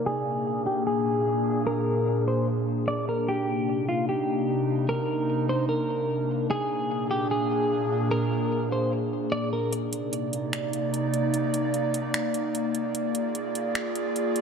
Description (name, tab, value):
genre	hip hop, atmospheric cloud-rap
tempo	149 BPM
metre	4/4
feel	half-time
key	C minor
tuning	A4 = 438 Hz
part	airy breathy pad	sustained chords	0.0-14.4 s	Bb2 to D5	-26 LUFS	equal	chorus, low-pass filter
part	clean electric guitar	melody	0.1-9.7 s	F4 to D5	-28 LUFS	equal	low-pass filter, ping-pong delay
part	trap drum kit	drums	9.7-14.4 s	finger snaps, hi-hat	-32 LUFS	right 1 dB	none
room	moderate lush hall reverb, RT60 1.9 s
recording	none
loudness	-24 LUFS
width	side -6 dB against mid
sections	0.0-9.7 A section; 9.7-14.4 B section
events	filter sweep 0.0-9.7; kick muted 9.7-14.4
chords	0.1 Bb7; 3.3 Cm9; 6.5 Bb7; 9.7 Cm9; 12.9 Bb7